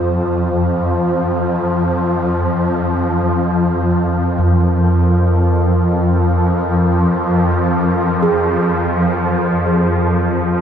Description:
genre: dark ambient drone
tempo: free time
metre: none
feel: none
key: F minor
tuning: A4 = 440 Hz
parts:
  - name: dark analog pad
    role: sustained chords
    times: 0.0-10.6 s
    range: C4 to C5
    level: -24 LUFS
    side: left 1 dB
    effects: chorus, shimmer reverb
  - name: swarming drone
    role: drone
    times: 0.0-10.6 s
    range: F2 to F3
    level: -14 LUFS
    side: equal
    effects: built-in reverb
  - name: gamelan-type bossed gongs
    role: arpeggios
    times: 4.4-10.6 s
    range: F2 to Ab4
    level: -18 LUFS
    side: right 1 dB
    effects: ping-pong delay
room: wet cathedral reverb, RT60 6.0 s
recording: none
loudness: -13 LUFS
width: side -8 dB against mid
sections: 0.0-10.6 A section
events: fade-out on analog synth pad 0.0-10.6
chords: 0.0 F5

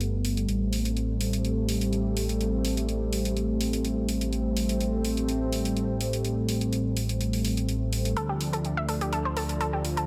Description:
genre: progressive house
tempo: 125 BPM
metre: 4/4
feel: straight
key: A minor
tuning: A4 = 440 Hz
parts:
  - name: lush unison pad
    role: sustained chords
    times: 0.0-10.1 s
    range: F3 to D4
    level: -31 LUFS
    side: equal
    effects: chorus
  - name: fat analog bass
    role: bass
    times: 0.0-10.1 s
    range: G1 to D2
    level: -32 LUFS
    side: equal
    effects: none
  - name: electronic hi-hat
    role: drums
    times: 0.0-10.1 s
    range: none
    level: -37 LUFS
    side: equal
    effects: none
  - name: analog pluck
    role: arpeggios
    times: 8.2-10.1 s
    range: G4 to E5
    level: -33 LUFS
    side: equal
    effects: chorus, tape echo
room: light reverb, digital ambience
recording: none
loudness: -28 LUFS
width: mono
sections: 0.0-10.1 A section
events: filter sweep on analog synth pad 0.0-10.1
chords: 0.5 Am7; 8.2 Dm

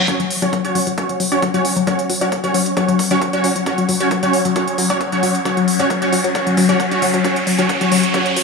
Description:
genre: driving peak-time techno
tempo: 134 BPM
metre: 4/4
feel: straight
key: unclear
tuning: A4 = 438 Hz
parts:
  - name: rave stab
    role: stabs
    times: 0.0-8.3 s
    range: C#4 to C#5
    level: -19 LUFS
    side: right 2 dB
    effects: chorus, built-in reverb, sidechain pumping, tape echo
  - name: reverse cymbal and riser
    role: sound effects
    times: 0.0-8.4 s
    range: none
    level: -24 LUFS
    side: equal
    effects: none
  - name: analog pluck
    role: riff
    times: 0.1-8.4 s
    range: F#3 to F#4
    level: -20 LUFS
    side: left 4 dB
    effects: chorus, overdrive, sidechain pumping, tape echo
  - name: swarming drone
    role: drone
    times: 0.9-8.4 s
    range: F#3 to C#4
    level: -22 LUFS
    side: left 5 dB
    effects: built-in reverb, sidechain pumping
  - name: electronic hi-hat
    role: drums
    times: 0.1-8.4 s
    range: none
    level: -24 LUFS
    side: equal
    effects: overdrive, sidechain pumping on hats
  - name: electronic kick drum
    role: drums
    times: 0.1-8.2 s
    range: none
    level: -27 LUFS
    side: left 1 dB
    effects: overdrive, high-pass filter on kick
room: moderate lush hall reverb, RT60 2.0 s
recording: high-pass filter, studio ambience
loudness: -14 LUFS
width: side -4 dB against mid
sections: 0.1-8.4 A section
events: build-up 0.1-8.4; riser 0.1-8.4; filter sweep on synth arpeggio sound 0.1-8.4; drum fill 7.2-8.4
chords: 0.1 F#5

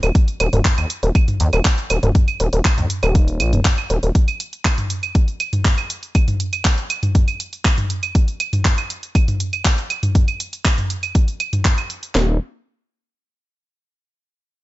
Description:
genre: melodic techno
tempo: 120 BPM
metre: 4/4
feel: straight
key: unclear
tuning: A4 = 438 Hz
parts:
  - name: gritty driven synth bass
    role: bass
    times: 0.0-4.1, 12.2-12.4 s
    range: Eb1 to Eb2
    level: -17 LUFS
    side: equal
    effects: distortion, sidechain pumping
  - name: house drum kit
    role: drums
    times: 0.0-12.1 s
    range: claves, handclaps, hi-hat, toms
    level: -21 LUFS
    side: right 1 dB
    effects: none
  - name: house drum kit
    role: drums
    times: 0.1-12.3 s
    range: handclaps, kick drum, snare drum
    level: -16 LUFS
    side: equal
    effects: none
room: little or no reverb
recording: nothing above 7.8 kHz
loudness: -16 LUFS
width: side -17 dB against mid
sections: 0.0-12.2 A section; 12.2-14.2 B section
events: none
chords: none

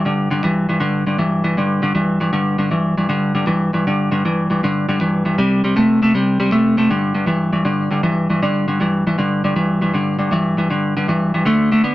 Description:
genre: blues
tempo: 158 BPM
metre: 4/4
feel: swing 68% on 8ths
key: unclear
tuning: A4 = 442 Hz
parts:
  - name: clean electric guitar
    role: solo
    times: 0.0-11.9 s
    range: G2 to B3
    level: -15 LUFS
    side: equal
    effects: none
room: wet small room reverb, RT60 0.5 s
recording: rough rehearsal-room recording, tube saturation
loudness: -15 LUFS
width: side -16 dB against mid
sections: 0.0-11.9 A section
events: none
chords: 0.0 G5; 5.4 C5; 6.9 G5

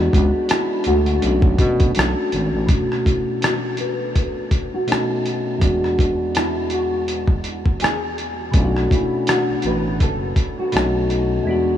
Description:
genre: lo-fi hip hop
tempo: 82 BPM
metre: 4/4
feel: swing 57% on 16ths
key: B dorian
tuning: A4 = 440 Hz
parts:
  - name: soft electric-piano-like synth keys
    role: accompaniment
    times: 0.0-11.8 s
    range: E2 to F#4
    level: -21 LUFS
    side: equal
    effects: chorus, low-pass filter
  - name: growling FM bass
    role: bass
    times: 0.0-2.7, 8.5-11.4 s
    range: F#1 to B2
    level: -20 LUFS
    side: equal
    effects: none
  - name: nylon-string guitar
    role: melody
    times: 0.1-10.7 s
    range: D4 to B4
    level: -26 LUFS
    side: equal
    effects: ensemble chorus, low-pass filter, diffuse ambient delay
  - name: dusty soul sampler-style drum kit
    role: drums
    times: 0.1-11.3 s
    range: hi-hat, kick drum, rim click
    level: -21 LUFS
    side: equal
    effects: none
room: wet huge ambient reverb, RT60 7.8 s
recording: dreamy mix soaked in reverb, cassette tape, small room ambience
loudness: -17 LUFS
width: side -10 dB against mid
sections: 0.0-2.7 A section; 2.7-11.8 B section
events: filter sweep 2.7-11.8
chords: 0.0 E7; 1.2 Bm7; 2.7 Bm9; 4.9 B7; 5.6 E7; 8.5 Bm9; 10.7 B7

